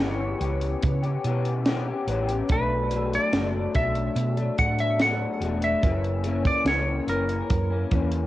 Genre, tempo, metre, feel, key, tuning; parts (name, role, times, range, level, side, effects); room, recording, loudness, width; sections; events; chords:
indie pop, bedroom pop; 72 BPM; 4/4; straight; B minor; A4 = 440 Hz
clean lap steel guitar; melody; 0.0-7.9 s; A#4 to F#5; -28 LUFS; equal; wide subtle chorus, tape echo
electric guitar through a small old amp; accompaniment; 0.0-8.3 s; F#2 to G4; -28 LUFS; left 4 dB; analog chorus, vibrato effect, cassette tape
hollow-body short-scale fingered electric bass; bass; 0.0-8.3 s; E1 to C#3; -27 LUFS; right 1 dB
compact cocktail drum kit; drums; 0.4-8.3 s; hi-hat, kick drum, snare drum; -26 LUFS; right 1 dB; vintage 12-bit sampler grit, cassette tape
moderate studio reverb, RT60 0.6 s; home recording on cassette; -22 LUFS; side -15 dB against mid
0.0-8.3 A section
0.0 C#m7b5; 2.5 Bm7; 5.8 F#7